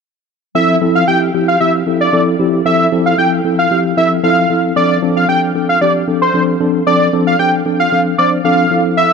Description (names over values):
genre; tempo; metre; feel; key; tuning
pop; 114 BPM; 4/4; straight; F major; A4 = 439 Hz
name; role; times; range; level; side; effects
mellow tine electric piano; accompaniment; 0.5-9.1 s; F3 to C5; -14 LUFS; left 1 dB; medium stereo tremolo, tape echo
wide unison lead; melody; 0.6-9.1 s; C5 to G5; -14 LUFS; right 1 dB; tape echo
room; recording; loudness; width
moderate plate reverb, RT60 3.1 s; echo-heavy mix; -11 LUFS; side -5 dB against mid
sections
0.6-9.1 A section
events
none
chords
0.6 Fmaj7; 4.8 Dm7/F